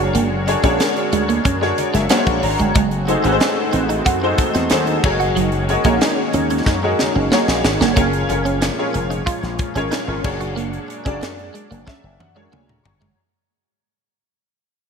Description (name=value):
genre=polished 1980s jazz-funk pop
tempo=92 BPM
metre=4/4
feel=straight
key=unclear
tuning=A4 = 440 Hz
part: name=clear baby grand piano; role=accompaniment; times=0.0-13.2 s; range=C#4 to C#6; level=-20 LUFS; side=left 1 dB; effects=analog chorus
part: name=chorused pulse-width pad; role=sustained chords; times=0.0-13.1 s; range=A#2 to C#5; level=-27 LUFS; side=left 3 dB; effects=none
part: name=clean electric guitar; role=riff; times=0.0-13.1 s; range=F#3 to F#4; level=-23 LUFS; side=right 6 dB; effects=analog chorus
part: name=slap bass with an envelope filter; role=bass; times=0.0-13.1 s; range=E#1 to F#2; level=-23 LUFS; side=equal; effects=none
part: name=tight funk drum kit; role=drums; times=0.1-13.2 s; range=crash cymbal, hi-hat, kick drum, snare drum, toms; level=-21 LUFS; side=equal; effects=gated reverb
part: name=congas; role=percussion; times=0.2-13.2 s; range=none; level=-35 LUFS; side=left 3 dB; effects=none
room=light reverb, studio ambience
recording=bright 1980s-style digital production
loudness=-16 LUFS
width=side -6 dB against mid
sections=0.0-8.0 A section; 8.0-13.2 B section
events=grand piano fill 1.5-2.8, 11.2-13.2; drum fill 6.7-8.0, 11.9-13.2; fade-out 8.0-13.2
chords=0.0 A#7alt/F#; 2.8 G#7b9/F#; 5.0 F#69; 8.0 A#m7; 10.2 A#7alt/F#